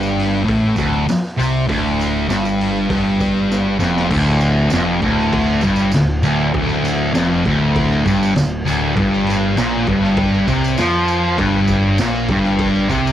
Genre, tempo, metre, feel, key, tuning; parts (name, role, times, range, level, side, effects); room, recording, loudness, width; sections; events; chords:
garage rock duo or trio; 99 BPM; 4/4; straight; A4 = 438 Hz
thick fuzz guitar; riff; 0.0-13.1 s; D2 to F3; -15 LUFS; equal; distortion
growling picked electric bass; bass; 0.0-13.1 s; D1 to F2; -24 LUFS; equal; overdrive
tambourine; percussion; 0.0-13.1 s; -35 LUFS; right 6 dB
raw garage drum kit; drums; 0.2-13.0 s; crash cymbal, hi-hat, kick drum, snare drum; -24 LUFS; equal; cassette tape
small room ambience; home recording on cassette; -14 LUFS; side -11 dB against mid
0.0-4.1 A section; 4.1-13.1 B section
drum fill 3.5-4.1
0.0 D5; 4.1 Dmadd11; 9.0 Gm7